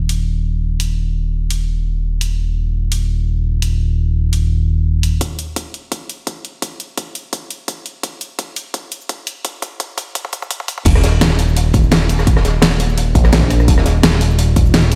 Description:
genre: liquid drum and bass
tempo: 170 BPM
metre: 4/4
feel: swing 54% on 16ths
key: unclear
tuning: A4 = 439 Hz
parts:
  - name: smooth synth bass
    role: bass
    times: 0.0-5.2, 10.9-15.0 s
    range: Eb1 to Bb1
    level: -17 LUFS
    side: equal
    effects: none
  - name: pop drum kit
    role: drums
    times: 0.1-15.0 s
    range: cabasa, crash cymbal, hi-hat, rim click, snare drum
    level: -21 LUFS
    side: equal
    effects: none
  - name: electronic kick drum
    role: drums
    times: 5.2-14.6 s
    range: none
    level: -19 LUFS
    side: equal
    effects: high-pass filter on kick, high-pass filter on room
  - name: crunchy breakbeat drum kit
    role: drums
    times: 10.8-15.0 s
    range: hi-hat, snare drum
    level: -24 LUFS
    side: equal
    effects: high-pass filter on hats, high-pass filter on snare, high-pass filter on room
room: little or no reverb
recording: played on a big sound system in a bare room, stone room reverb, high-pass filter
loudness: -17 LUFS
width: mono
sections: 0.0-5.2 A section; 5.2-10.9 B section; 10.9-15.0 C section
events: build-up 5.2-10.9; drum fill 8.0-10.9; drop 10.9-15.0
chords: none

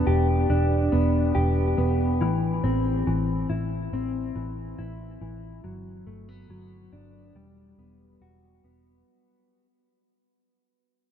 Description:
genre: dream pop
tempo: 70 BPM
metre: 4/4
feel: straight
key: E minor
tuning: A4 = 440 Hz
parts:
  - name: mellow electric guitar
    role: arpeggios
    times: 0.0-9.7 s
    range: E3 to G4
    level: -26 LUFS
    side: left 1 dB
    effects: analog chorus, ping-pong delay
  - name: vintage muted picked electric bass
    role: bass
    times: 0.1-9.0 s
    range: E1 to A1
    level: -26 LUFS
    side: right 1 dB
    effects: none
room: moderate huge ambient reverb, RT60 6.1 s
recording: dark, warm production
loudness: -22 LUFS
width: side -9 dB against mid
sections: 0.0-9.1 A section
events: fade-out 0.0-9.1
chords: 0.0 Em7; 2.2 Am; 5.6 Gmaj7; 7.4 Emadd9

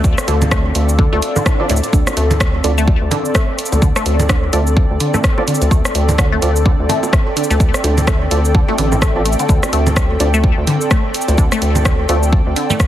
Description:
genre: minimal techno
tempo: 127 BPM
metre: 4/4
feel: swing 59% on 16ths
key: D minor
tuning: A4 = 439 Hz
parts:
  - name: rubbery square bass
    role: bass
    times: 0.0-12.5 s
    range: A1 to D2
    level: -16 LUFS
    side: equal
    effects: sidechain pumping
  - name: electronic kick drum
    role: drums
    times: 0.0-12.9 s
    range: none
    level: -14 LUFS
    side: equal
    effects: none
  - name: house drum kit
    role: drums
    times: 0.0-12.9 s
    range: hi-hat, rim click, shaker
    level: -21 LUFS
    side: right 1 dB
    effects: none
  - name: airy breathy pad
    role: texture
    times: 0.0-12.9 s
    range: C4 to G5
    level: -22 LUFS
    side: equal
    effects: chorus, sidechain pumping
  - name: resonant blip pluck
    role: riff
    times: 0.3-12.7 s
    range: A2 to A3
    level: -21 LUFS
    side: left 1 dB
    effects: phaser, sidechain pumping, ping-pong delay
  - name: bongos and congas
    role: percussion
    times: 0.3-12.8 s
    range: none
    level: -23 LUFS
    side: right 2 dB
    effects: overdrive, digital delay
  - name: swell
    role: sound effects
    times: 1.2-1.9 s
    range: none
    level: -26 LUFS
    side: equal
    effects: none
  - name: percussive organ stab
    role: stabs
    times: 1.6-12.2 s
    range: C4 to D5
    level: -24 LUFS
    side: right 2 dB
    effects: ensemble chorus, digital delay
  - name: pulsing gated texture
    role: texture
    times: 2.8-12.9 s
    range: A4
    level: -29 LUFS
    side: right 3 dB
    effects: none
room: light reverb, digital ambience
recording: heavily compressed radio sound, multiband compression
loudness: -12 LUFS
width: side -12 dB against mid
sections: 0.0-12.9 A section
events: swell 1.2-1.9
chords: 0.0 Dm7

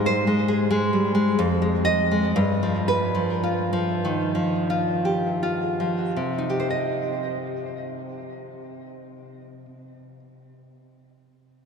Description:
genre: romantic piece for solo classical guitar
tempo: 39-70 BPM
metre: 3/4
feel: rubato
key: C minor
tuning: A4 = 439 Hz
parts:
  - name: nylon-string guitar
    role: solo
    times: 0.0-10.2 s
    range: F2 to Eb5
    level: -22 LUFS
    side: equal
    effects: diffuse ambient delay
room: wet cathedral reverb, RT60 5.7 s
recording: dreamy mix soaked in reverb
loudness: -21 LUFS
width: side -6 dB against mid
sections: 0.0-6.2 A section; 6.2-10.4 B section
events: slowing down 0.0-6.2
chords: 0.0 Ab; 1.4 Fm7; 2.4 G7(no3); 6.2 Cm

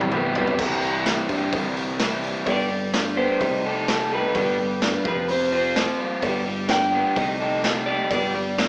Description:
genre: indie rock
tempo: 128 BPM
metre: 4/4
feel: straight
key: unclear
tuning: A4 = 436 Hz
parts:
  - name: electric guitar at the edge of break-up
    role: melody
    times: 0.0-8.7 s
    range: A4 to G5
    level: -24 LUFS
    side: equal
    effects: none
  - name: bell-like tine electric piano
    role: second line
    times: 0.0-0.6 s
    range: B4 to D5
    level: -32 LUFS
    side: equal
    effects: none
  - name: crunchy overdriven guitar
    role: riff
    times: 0.0-8.7 s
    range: C3 to C5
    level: -26 LUFS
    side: equal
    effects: none
  - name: electric guitar through a small old amp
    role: riff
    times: 0.0-8.7 s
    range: F3 to G4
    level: -27 LUFS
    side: equal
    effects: none
  - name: modern bright fingered electric bass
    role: bass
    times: 0.0-8.7 s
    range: F1 to G2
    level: -33 LUFS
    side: equal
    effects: none
  - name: raw garage drum kit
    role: drums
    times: 0.0-8.7 s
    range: crash cymbal, hi-hat, kick drum, snare drum, toms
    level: -26 LUFS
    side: equal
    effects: none
room: moderate recital hall reverb, RT60 1.6 s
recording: recorded in a church or concert hall, small speaker sound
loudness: -20 LUFS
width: side -37 dB against mid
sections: 0.6-2.5 A section; 2.5-8.7 B section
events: drum fill 0.0-0.6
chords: 0.0 Cmaj7; 0.6 C; 2.5 G; 3.4 Cm6; 4.4 G; 5.1 Fsus2; 6.2 G; 7.2 Cm6; 8.1 G

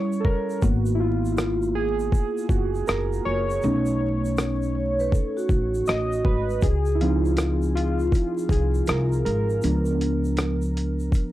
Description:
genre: lo-fi hip hop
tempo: 80 BPM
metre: 4/4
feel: swing 66% on 16ths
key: unclear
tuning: A4 = 440 Hz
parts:
  - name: warbly lo-fi synth keys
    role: accompaniment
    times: 0.0-11.3 s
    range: F3 to D#5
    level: -25 LUFS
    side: equal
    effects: chorus, low-pass filter
  - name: tube shaker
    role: percussion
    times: 0.1-11.3 s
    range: none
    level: -48 LUFS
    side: left 2 dB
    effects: none
  - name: dusty soul sampler-style drum kit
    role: drums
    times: 0.2-11.3 s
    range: hi-hat, kick drum, rim click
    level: -23 LUFS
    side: equal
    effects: overdrive
  - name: upright bass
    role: bass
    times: 0.6-11.1 s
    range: Gb1 to Db2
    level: -25 LUFS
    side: equal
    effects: none
  - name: vibraphone with soft mallets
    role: second line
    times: 4.8-6.5 s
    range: F#4 to C#5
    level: -27 LUFS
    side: right 2 dB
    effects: low-pass filter, tape echo
room: light reverb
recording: dry, gritty hardware recording, vinyl crackle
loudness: -21 LUFS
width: side -14 dB against mid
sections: 0.0-11.3 A section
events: break 0.0-6.6; synth keys solo 0.0-11.3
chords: 0.0 Gdim7; 0.6 Abm9; 3.6 B9; 6.6 Dbmaj9; 9.6 Db7b9

